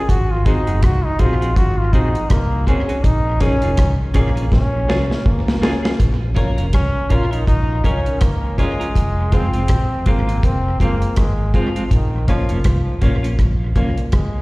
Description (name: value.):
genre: roots reggae.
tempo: 81 BPM.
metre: 4/4.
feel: swing 59% on 16ths.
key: Bb minor.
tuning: A4 = 440 Hz.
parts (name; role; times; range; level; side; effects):
brilliant trombone; melody; 0.0-14.4 s; Eb3 to Ab4; -24 LUFS; equal; tube saturation, tape echo, slapback echo.
clean electric guitar; accompaniment; 0.0-13.9 s; Ab3 to Bb4; -27 LUFS; right 1 dB; tremolo, tape echo, slapback echo.
vintage muted fingered electric bass; bass; 0.1-14.4 s; F1 to Db2; -18 LUFS; equal; none.
deep reggae drum kit; drums; 0.1-14.3 s; hi-hat, kick drum, rim click, snare drum; -18 LUFS; equal; tape echo.
clear upright piano; stabs; 0.4-14.0 s; F4 to Db5; -30 LUFS; left 3 dB; slapback echo.
room: small room ambience.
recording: live gig heard through the venue's PA, recital hall reverb.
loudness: -15 LUFS.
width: side -22 dB against mid.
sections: 0.0-6.0 A section; 6.0-14.4 B section.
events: drum fill 4.5-6.0; trombone solo 6.0-14.4.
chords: 0.1 Ab7; 3.0 Bbm7; 6.0 Bbm; 9.0 Fm; 11.9 Bbm.